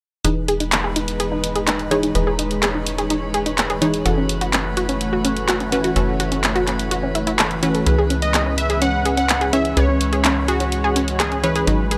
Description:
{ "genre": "progressive house", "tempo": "126 BPM", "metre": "4/4", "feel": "straight", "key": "E major", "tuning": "A4 = 437 Hz", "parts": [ { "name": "lush unison pad", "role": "sustained chords", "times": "0.5-12.0 s", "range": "E3 to C#5", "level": "-28 LUFS", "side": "equal", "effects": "chorus, phaser" }, { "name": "analog pluck", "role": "arpeggios", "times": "0.2-12.0 s", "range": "C#4 to A4", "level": "-26 LUFS", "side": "equal", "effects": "chorus, dub echo" }, { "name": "unison pluck", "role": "stabs", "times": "0.2-12.0 s", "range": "E3 to C#5", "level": "-26 LUFS", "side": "equal", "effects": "dub echo" }, { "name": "tight sequencer bass", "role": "bass", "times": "0.2-12.0 s", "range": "E1 to C#2", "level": "-27 LUFS", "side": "equal", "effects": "none" }, { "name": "pop drum kit", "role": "drums", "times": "0.2-12.0 s", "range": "handclaps, hi-hat", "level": "-24 LUFS", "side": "equal", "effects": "none" }, { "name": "drifting glass-harmonics texture", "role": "texture", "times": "0.6-12.0 s", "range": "B4 to B5", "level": "-36 LUFS", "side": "equal", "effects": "chorus, built-in reverb" }, { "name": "plucky unison lead", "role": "melody", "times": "8.2-12.0 s", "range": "F#4 to F#5", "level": "-25 LUFS", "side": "equal", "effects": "cassette tape, digital delay" } ], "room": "light reverb, digital ambience", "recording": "none", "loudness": "-19 LUFS", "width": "mono", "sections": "0.2-12.0 A section", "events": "filter sweep on synth arpeggio sound 0.2-12.0", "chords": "0.2 Emaj7; 4.1 F#m7; 7.9 C#m7", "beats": "| 0.25 0.72 1.20 1.68 | 2.15 2.63 3.10 3.58 | 4.06 4.53 5.01 5.48 | 5.96 6.44 6.91 7.39 | 7.87 8.34 8.82 9.29 | 9.77 10.25 10.72 11.20 | 11.68" }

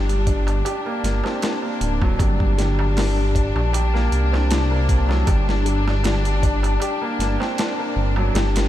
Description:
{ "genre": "trip hop", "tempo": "78 BPM", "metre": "4/4", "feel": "swing 54% on 16ths", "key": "G harmonic minor", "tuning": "A4 = 440 Hz", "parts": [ { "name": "warm symphonic string section", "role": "sustained chords", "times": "0.0-8.7 s", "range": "D4", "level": "-26 LUFS", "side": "left 4 dB", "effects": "none" }, { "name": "felt-muted upright piano", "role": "arpeggios", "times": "0.0-8.7 s", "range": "F#3 to G4", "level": "-26 LUFS", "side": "right 1 dB", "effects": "tape echo" }, { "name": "dark detuned saw bass", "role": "bass", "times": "0.0-8.7 s", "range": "D1 to C2", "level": "-20 LUFS", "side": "equal", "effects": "none" }, { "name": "dusty soul sampler-style drum kit", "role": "drums", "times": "0.1-8.7 s", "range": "hi-hat, kick drum, snare drum", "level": "-24 LUFS", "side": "equal", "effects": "overdrive, studio ambience" }, { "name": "darbuka", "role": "percussion", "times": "0.1-8.7 s", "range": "none", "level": "-36 LUFS", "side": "right 4 dB", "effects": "none" } ], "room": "light reverb, studio ambience", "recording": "none", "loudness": "-18 LUFS", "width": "side -12 dB against mid", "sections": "0.0-8.7 A section", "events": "none", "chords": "0.0 Gm; 5.3 Csus2/G", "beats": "0.66 1.43 | 2.19 2.96 3.73 4.50 | 5.27 6.04 6.81 7.58 | 8.35" }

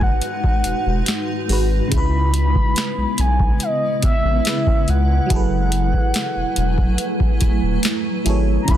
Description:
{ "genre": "contemporary R&B", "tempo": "71 BPM", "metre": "4/4", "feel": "straight", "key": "unclear", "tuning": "A4 = 440 Hz", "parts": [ { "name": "mellow horn-like synth lead", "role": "melody", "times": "0.0-8.8 s", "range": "D#5 to B5", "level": "-24 LUFS", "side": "equal", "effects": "chorus, tape echo" }, { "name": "FM electric piano", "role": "accompaniment", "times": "0.0-8.8 s", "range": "G#2 to C#5", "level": "-26 LUFS", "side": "left 1 dB", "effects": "chorus, phaser" }, { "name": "granular cloud pad", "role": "sustained chords", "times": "0.0-8.8 s", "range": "C#3 to G#5", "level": "-24 LUFS", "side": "right 2 dB", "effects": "built-in reverb" }, { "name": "saturated sub bass", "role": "bass", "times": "0.0-8.8 s", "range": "D#1 to C#2", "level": "-19 LUFS", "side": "equal", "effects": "none" }, { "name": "booming analog drum machine", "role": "drums", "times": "0.0-8.8 s", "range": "hi-hat, kick drum, snare drum", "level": "-19 LUFS", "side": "equal", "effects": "none" }, { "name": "downlifter", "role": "sound effects", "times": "0.0-1.9 s", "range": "none", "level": "-43 LUFS", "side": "equal", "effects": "none" } ], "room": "little or no reverb", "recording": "dense, heavily limited modern master", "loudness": "-16 LUFS", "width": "side -11 dB against mid", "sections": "0.0-8.7 A section", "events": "none", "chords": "0.0 G#m7; 1.9 C#m7; 5.3 F#m11", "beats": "0.23 1.07 | 1.92 2.77 3.61 4.46 | 5.30 6.14 6.99 7.83 | 8.68" }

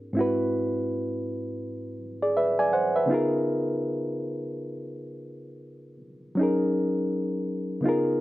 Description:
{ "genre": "R&B", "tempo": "82 BPM", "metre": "4/4", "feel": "swing 61% on 16ths", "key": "F# major", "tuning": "A4 = 440 Hz", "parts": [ { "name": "reed electric piano", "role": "solo", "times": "0.0-8.2 s", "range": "G#2 to G#5", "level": "-25 LUFS", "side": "equal", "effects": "none" } ], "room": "moderate small room reverb, RT60 0.5 s", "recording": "none", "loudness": "-24 LUFS", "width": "side -16 dB against mid", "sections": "0.0-8.2 A section", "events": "none", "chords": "0.2 G#7alt; 3.1 C#13; 6.4 F#69", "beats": "| 0.52 1.25 1.98 2.71 | 3.45 4.18 4.91 5.64 | 6.37 7.11 7.84" }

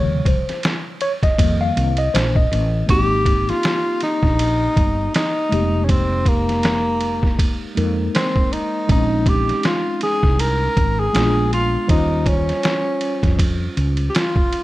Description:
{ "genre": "hip hop, jazz-hop", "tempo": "80 BPM", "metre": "4/4", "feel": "swing 58% on 16ths", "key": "unclear", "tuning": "A4 = 440 Hz", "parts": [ { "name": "tine electric piano", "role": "accompaniment", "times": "0.0-14.6 s", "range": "C3 to F5", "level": "-24 LUFS", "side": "left 1 dB", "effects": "medium stereo tremolo" }, { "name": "woody fretless electric bass", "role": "bass", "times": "0.0-14.1 s", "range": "F1 to F2", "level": "-20 LUFS", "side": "equal", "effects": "lush chorus" }, { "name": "trip hop sampler-style drum kit", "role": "drums", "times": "0.3-14.6 s", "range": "hi-hat, kick drum, ride cymbal, snare drum", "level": "-20 LUFS", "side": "equal", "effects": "none" }, { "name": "breathy tenor saxophone", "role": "melody", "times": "2.9-14.6 s", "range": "Bb3 to Bb4", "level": "-20 LUFS", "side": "equal", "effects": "slapback echo" } ], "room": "digital ambience", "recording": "none", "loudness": "-16 LUFS", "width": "side -17 dB against mid", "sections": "0.0-2.9 A section; 2.9-14.6 B section", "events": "tine electric piano solo 0.0-2.9", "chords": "0.0 Eb13; 1.4 F9sus4; 2.9 Abmaj9; 5.5 Fm11; 8.9 Bbm11; 11.1 Bb7b9; 11.9 Eb13", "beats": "0.64 1.39 2.14 | 2.89 3.64 4.39 5.14 | 5.89 6.64 7.39 8.14 | 8.89 9.64 10.39 11.14 | 11.89 12.64 13.39 14.14" }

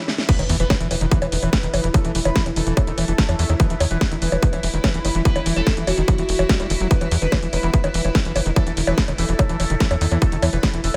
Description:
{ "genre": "psychedelic trance", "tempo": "145 BPM", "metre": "4/4", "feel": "straight", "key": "unclear", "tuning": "A4 = 441 Hz", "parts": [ { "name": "swell and impact", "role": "sound effects", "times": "0.0-1.9 s", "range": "none", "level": "-33 LUFS", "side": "equal", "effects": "none" }, { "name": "techno drum kit", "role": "drums", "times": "0.1-11.0 s", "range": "bongos, crash cymbal, hi-hat, snare drum", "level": "-27 LUFS", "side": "equal", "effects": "none" }, { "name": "overdriven synth lead", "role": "melody", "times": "0.3-11.0 s", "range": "F#4 to B4", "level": "-31 LUFS", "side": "equal", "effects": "phaser, sidechain pumping, tape echo" }, { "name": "evolving wavetable pad", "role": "sustained chords", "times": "0.9-11.0 s", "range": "E4", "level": "-33 LUFS", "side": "equal", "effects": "chorus, built-in reverb, sidechain pumping" }, { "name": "screaming distorted acid line", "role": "riff", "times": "0.3-11.0 s", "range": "D#3 to G3", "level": "-28 LUFS", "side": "equal", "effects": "distortion, chorus, cassette tape, sidechain pumping, tape echo" }, { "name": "electronic kick drum", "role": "drums", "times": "0.3-10.7 s", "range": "none", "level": "-22 LUFS", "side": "equal", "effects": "distortion" }, { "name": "tight sequencer bass", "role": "bass", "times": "0.4-11.0 s", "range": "E1 to E2", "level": "-25 LUFS", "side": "equal", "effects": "none" }, { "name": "resonant blip pluck", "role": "second line", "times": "7.6-11.0 s", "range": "A3 to B3", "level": "-41 LUFS", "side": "equal", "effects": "none" } ], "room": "light reverb", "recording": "none", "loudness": "-20 LUFS", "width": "mono", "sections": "0.3-11.0 A section", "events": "drum fill 0.0; swell 0.0; stop 0.0; drop 0.3-11.0; impact 0.3-1.9", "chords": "0.3 E5", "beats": "| 0.29 0.70 1.11 1.53 | 1.94 2.36 2.77 3.18 | 3.60 4.01 4.42 4.84 | 5.25 5.67 6.08 6.49 | 6.91 7.32 7.74 8.15 | 8.56 8.98 9.39 9.80 | 10.22 10.63" }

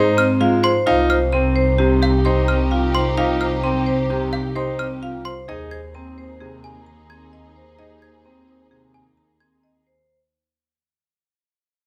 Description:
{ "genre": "classical, minimalist pattern music", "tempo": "130 BPM", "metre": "5/4", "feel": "straight", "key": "unclear", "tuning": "A4 = 440 Hz", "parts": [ { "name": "marimba with hard mallets", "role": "melody", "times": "0.0-9.9 s", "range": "G4 to C6", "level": "-29 LUFS", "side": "equal", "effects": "none" }, { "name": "clear baby grand piano", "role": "accompaniment", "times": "0.0-9.0 s", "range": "C3 to Eb4", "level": "-28 LUFS", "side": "equal", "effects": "none" }, { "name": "warm symphonic violin section", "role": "sustained chords", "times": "0.0-9.8 s", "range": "Eb4 to C5", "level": "-33 LUFS", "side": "equal", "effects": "none" }, { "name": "vibraphone with hard mallets", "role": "arpeggios", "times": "0.0-10.2 s", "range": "C4 to C5", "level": "-23 LUFS", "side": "equal", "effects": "none" }, { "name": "rich symphonic double bass section", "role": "bass", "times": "0.0-10.0 s", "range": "C2 to Ab2", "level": "-25 LUFS", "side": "equal", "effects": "none" }, { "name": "trough xylophone with wooden mallets", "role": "arpeggios", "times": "0.2-9.7 s", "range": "F5 to Ab6", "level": "-27 LUFS", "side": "equal", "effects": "none" } ], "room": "moderate large studio reverb, RT60 1.0 s", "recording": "none", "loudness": "-18 LUFS", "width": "mono", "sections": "0.0-10.1 A section", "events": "fade-out 0.0-10.1", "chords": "0.0 Ab; 0.9 Cm; 5.5 Ebsus4", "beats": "0.40 | 0.87 1.33 1.79 2.25 2.71 | 3.17 3.63 4.10 4.56 5.02 | 5.48 5.94 6.40 6.87 7.33 | 7.79 8.25 8.71 9.17 9.63" }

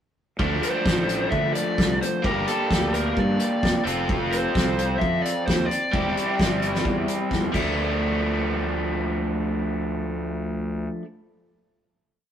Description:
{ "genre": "indie rock", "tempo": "131 BPM", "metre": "4/4", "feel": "straight", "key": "D minor", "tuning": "A4 = 441 Hz", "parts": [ { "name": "overdriven electric guitar", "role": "riff", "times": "0.4-11.1 s", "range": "F3 to A4", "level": "-25 LUFS", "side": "equal", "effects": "spring reverb" }, { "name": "fuzz fingered electric bass", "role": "bass", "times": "0.4-10.9 s", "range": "E1 to D3", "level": "-28 LUFS", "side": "equal", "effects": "overdrive" }, { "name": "loose indie drum kit", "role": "drums", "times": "0.4-7.7 s", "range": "crash cymbal, hi-hat, kick drum, snare drum, toms", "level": "-25 LUFS", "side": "equal", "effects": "none" }, { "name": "lead guitar through a small cranked amp", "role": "melody", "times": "0.6-7.3 s", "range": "A4 to E5", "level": "-27 LUFS", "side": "equal", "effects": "overdrive" } ], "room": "moderate small room reverb, RT60 0.5 s", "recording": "rough rehearsal-room recording", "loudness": "-21 LUFS", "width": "side -9 dB against mid", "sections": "0.4-7.8 interlude; 7.8-11.4 final hit", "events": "drum fill 7.3-7.8", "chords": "0.4 Dm7; 2.2 Gmadd9; 3.9 F; 5.9 Cadd9/E; 7.5 Dm", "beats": "| 0.39 0.85 1.32 1.78 | 2.24 2.71 3.17 3.63 | 4.09 4.55 5.01 5.47 | 5.93 6.39 6.85 7.31 | 7.76 8.22 8.68 9.14 | 9.59 10.05 10.51 10.97" }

